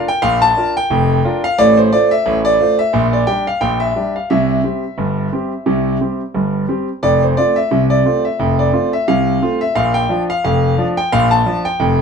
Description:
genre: ragtime piano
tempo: 88 BPM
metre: 2/4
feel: swing 56% on 16ths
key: F major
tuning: A4 = 440 Hz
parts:
  - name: clear concert grand piano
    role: solo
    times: 0.0-12.0 s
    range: F1 to A5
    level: -13 LUFS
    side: equal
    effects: none
room: moderate studio reverb, RT60 0.8 s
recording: band playing live in one room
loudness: -13 LUFS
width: side -6 dB against mid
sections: 0.0-12.0 A section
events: none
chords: 0.0 Bb; 1.6 F/A; 2.9 Gm/Bb; 4.3 C; 7.0 F; 9.8 Bb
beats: | 0.22 0.90 | 1.58 2.26 | 2.94 3.62 | 4.30 4.98 | 5.67 6.35 | 7.03 7.71 | 8.40 9.08 | 9.76 10.44 | 11.12 11.80

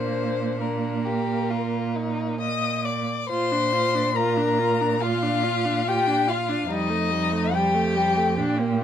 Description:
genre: classical, slow romantic movement for string quartet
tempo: 66-73 BPM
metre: 4/4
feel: rubato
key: Bb major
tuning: A4 = 440 Hz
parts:
  - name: rich violin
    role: melody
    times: 0.0-8.8 s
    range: Bb4 to Eb6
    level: -26 LUFS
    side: left 6 dB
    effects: none
  - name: warm violin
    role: second line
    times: 0.0-8.8 s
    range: D4 to Eb5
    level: -27 LUFS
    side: left 2 dB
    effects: none
  - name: rich viola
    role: accompaniment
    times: 0.0-8.8 s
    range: G3 to F4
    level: -28 LUFS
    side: right 3 dB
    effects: none
  - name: rich cello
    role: bass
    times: 0.0-8.8 s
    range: F2 to Bb2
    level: -28 LUFS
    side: right 5 dB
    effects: none
room: light reverb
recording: none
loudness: -21 LUFS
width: side -9 dB against mid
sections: 0.0-3.3 A section; 3.3-8.8 B section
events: none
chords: 0.0 Bb; 6.7 F9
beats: 0.61 1.51 2.41 | 3.30 4.16 5.02 5.88 | 6.71 7.54 8.38

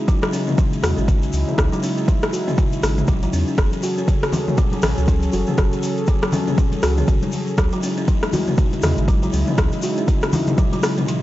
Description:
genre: afro house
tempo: 120 BPM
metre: 4/4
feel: swing 59% on 16ths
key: unclear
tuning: A4 = 440 Hz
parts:
  - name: warm analog pad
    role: sustained chords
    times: 0.0-11.2 s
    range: C#3 to A4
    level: -25 LUFS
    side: equal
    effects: chorus, sidechain pumping
  - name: buzzing kalimba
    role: arpeggios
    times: 0.1-11.2 s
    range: C#3 to F#4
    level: -24 LUFS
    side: left 1 dB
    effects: sidechain pumping, tape echo
  - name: deep house drum kit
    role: drums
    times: 0.1-11.2 s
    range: hi-hat, rim click, toms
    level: -24 LUFS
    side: left 1 dB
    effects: overdrive
  - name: electronic kick drum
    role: drums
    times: 0.1-10.7 s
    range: none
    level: -18 LUFS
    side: equal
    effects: overdrive
  - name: egg shaker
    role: percussion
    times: 0.1-11.2 s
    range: none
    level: -38 LUFS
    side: left 5 dB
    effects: none
  - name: warm sub bass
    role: bass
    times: 0.8-9.7 s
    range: F#1 to E2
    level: -21 LUFS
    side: equal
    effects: sidechain pumping
  - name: congas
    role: percussion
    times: 4.3-10.8 s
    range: none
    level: -26 LUFS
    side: left 2 dB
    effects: none
room: digital ambience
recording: dry, gritty hardware recording, transformer saturation, nothing above 7.8 kHz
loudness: -17 LUFS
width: side -15 dB against mid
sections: 0.0-11.2 A section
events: none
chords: 0.0 C#m; 3.6 F#madd9; 7.6 C#m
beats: 0.08 0.58 1.08 | 1.58 2.08 2.58 3.08 | 3.58 4.08 4.58 5.08 | 5.58 6.08 6.58 7.08 | 7.58 8.08 8.58 9.08 | 9.58 10.08 10.58 11.08

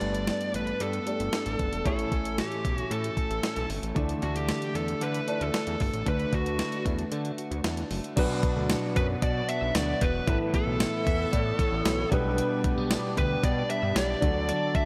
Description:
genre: 1980s-style pop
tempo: 114 BPM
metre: 4/4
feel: straight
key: unclear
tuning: A4 = 440 Hz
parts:
  - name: fuzz lead guitar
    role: melody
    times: 0.0-14.9 s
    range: F#4 to E5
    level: -34 LUFS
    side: equal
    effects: distortion
  - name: warm baby grand piano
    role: accompaniment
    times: 0.0-14.9 s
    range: G2 to D5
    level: -35 LUFS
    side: equal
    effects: none
  - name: clean electric guitar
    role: riff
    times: 0.0-14.9 s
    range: E3 to A4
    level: -38 LUFS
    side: equal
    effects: analog chorus, digital delay, slapback echo
  - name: fat analog bass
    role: bass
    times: 0.0-14.5 s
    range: E1 to D3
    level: -35 LUFS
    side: equal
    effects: none
  - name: clean 12-bit digital drum machine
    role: drums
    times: 0.0-14.9 s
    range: crash cymbal, hi-hat, kick drum, snare drum, tambourine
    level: -32 LUFS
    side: equal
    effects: overdrive
  - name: phased analog pad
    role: sustained chords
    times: 8.2-14.9 s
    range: D3 to A4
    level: -39 LUFS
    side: equal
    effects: phaser, chorus
  - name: warm symphonic violin section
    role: second line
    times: 11.1-13.0 s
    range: B4 to E5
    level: -40 LUFS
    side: equal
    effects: digital delay, slapback echo
room: moderate lush hall reverb, RT60 1.9 s, digital ambience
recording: big arena sound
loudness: -28 LUFS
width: mono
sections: 0.0-8.2 A section; 8.2-14.9 B section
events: none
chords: 0.0 Gadd9; 1.9 A; 4.0 Dsus2; 6.1 Bm7/D; 8.2 Bm; 10.3 Asus2; 12.1 G/B; 14.2 D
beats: 0.28 0.80 1.33 | 1.86 2.38 2.91 3.44 | 3.96 4.49 5.01 5.54 | 6.07 6.59 7.12 7.64 | 8.17 8.70 9.22 9.75 | 10.28 10.80 11.33 11.86 | 12.38 12.91 13.44 13.96 | 14.49

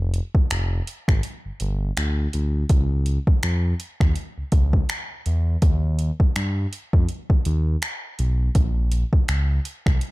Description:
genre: contemporary R&B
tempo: 82 BPM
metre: 4/4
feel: swing 58% on 16ths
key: unclear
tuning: A4 = 441 Hz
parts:
  - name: smooth gliding synth bass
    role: bass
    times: 0.0-10.0 s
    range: F1 to G2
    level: -22 LUFS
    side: equal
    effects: none
  - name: smooth R&B drum kit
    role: drums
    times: 0.1-10.1 s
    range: finger snaps, hi-hat, kick drum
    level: -21 LUFS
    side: equal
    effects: none
room: little or no reverb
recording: dark, warm production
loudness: -20 LUFS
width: side -20 dB against mid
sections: 0.0-10.1 A section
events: none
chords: none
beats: 0.50 1.23 1.97 | 2.70 3.43 4.16 4.89 | 5.62 6.36 7.09 7.82 | 8.55 9.28 10.01

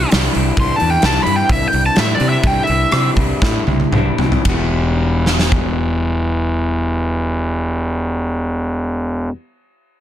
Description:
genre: quiet-loud alternative rock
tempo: 112-132 BPM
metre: 4/4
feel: straight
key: E minor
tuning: A4 = 440 Hz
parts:
  - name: biting lead guitar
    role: melody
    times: 0.0-3.1 s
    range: D5 to C6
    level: -18 LUFS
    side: equal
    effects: overdrive
  - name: electric guitar through a small old amp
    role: arpeggios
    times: 0.0-9.4 s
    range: E2 to E4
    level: -23 LUFS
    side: left 3 dB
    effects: none
  - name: fuzz fingered electric bass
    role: bass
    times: 0.0-9.3 s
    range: E1 to C3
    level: -18 LUFS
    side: equal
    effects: overdrive
  - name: big rock drum kit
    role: drums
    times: 0.1-5.6 s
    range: hi-hat, kick drum, ride cymbal, rim click, snare drum, toms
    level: -18 LUFS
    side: equal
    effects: none
room: little or no reverb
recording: dense, heavily limited modern master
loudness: -14 LUFS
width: side -11 dB against mid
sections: 0.0-4.5 A section; 4.5-8.7 B section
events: lead electric guitar solo 0.0-4.5; slowing down 0.6-4.5; drum fill 3.4-4.5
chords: 0.0 Cadd9; 4.5 Em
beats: 0.13 | 0.58 1.04 1.50 1.96 | 2.44 2.92 3.42 3.93 | 4.45 4.99 5.52 6.06 | 6.59 7.13 7.66 8.20

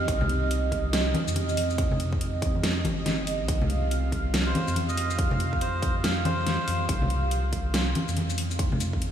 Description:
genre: deep dubstep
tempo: 141 BPM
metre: 4/4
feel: swing 61% on 16ths, half-time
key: C minor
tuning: A4 = 440 Hz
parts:
  - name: dark analog pad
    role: sustained chords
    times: 0.0-9.1 s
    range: C4 to F5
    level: -32 LUFS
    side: right 3 dB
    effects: chorus
  - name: soft dub sub bass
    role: bass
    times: 0.0-9.1 s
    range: G1 to F2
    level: -28 LUFS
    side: equal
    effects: tube saturation
  - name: dubstep drum kit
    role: drums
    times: 0.1-9.1 s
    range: hi-hat, shaker, snare drum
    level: -31 LUFS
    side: equal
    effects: none
  - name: electronic kick drum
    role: drums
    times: 0.1-9.0 s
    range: none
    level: -29 LUFS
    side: equal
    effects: none
  - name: congas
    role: percussion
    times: 0.2-8.8 s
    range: none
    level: -32 LUFS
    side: left 2 dB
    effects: dub echo
  - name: melodica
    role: melody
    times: 4.5-6.9 s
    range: C5 to Eb5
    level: -35 LUFS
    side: equal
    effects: dub echo
room: moderate huge ambient reverb, RT60 8.4 s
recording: dreamy mix soaked in reverb, studio reverb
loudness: -24 LUFS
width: side -9 dB against mid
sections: 0.0-9.1 A section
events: none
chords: 0.0 Cm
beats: | 0.08 0.51 0.93 1.36 | 1.78 2.21 2.63 3.06 | 3.49 3.91 4.34 4.76 | 5.19 5.61 6.04 6.46 | 6.89 7.32 7.74 8.17 | 8.59 9.02

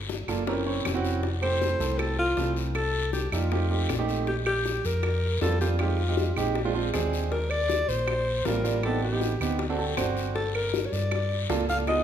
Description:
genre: Afro-Cuban jazz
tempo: 158 BPM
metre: 4/4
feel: straight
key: F major, Bb major from 4.3 s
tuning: A4 = 441 Hz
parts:
  - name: fingered electric bass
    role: bass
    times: 0.0-12.0 s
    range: F1 to G2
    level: -29 LUFS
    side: equal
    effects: none
  - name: bongos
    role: percussion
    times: 0.1-12.0 s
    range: none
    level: -35 LUFS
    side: left 7 dB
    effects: none
  - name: guiro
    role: percussion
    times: 0.1-12.0 s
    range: none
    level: -38 LUFS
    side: left 6 dB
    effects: none
  - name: clear concert grand piano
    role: accompaniment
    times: 0.3-12.0 s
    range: G3 to Db5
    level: -30 LUFS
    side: right 5 dB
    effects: none
  - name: claves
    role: percussion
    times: 0.3-12.0 s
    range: none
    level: -40 LUFS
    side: right 4 dB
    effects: none
  - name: warm alto saxophone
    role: melody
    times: 1.4-12.0 s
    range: F4 to F5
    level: -28 LUFS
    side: left 1 dB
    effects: none
room: wet recital hall reverb, RT60 1.7 s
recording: recorded in a church or concert hall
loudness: -24 LUFS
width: side -9 dB against mid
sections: 0.0-4.3 A section; 4.3-12.0 B section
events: none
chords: 0.5 Gb7#11; 1.2 Fmaj7; 2.8 Cm7; 3.5 F7; 4.3 Bb6; 5.8 Fm7; 6.6 Bb7; 7.3 Ebmaj7; 8.8 Am7b5; 9.6 D7; 10.4 Gm9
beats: 0.09 0.47 0.85 | 1.23 1.61 1.99 2.37 | 2.75 3.13 3.51 3.89 | 4.27 4.65 5.03 5.41 | 5.79 6.17 6.55 6.93 | 7.31 7.69 8.07 8.46 | 8.84 9.21 9.60 9.97 | 10.36 10.73 11.12 11.49 | 11.88

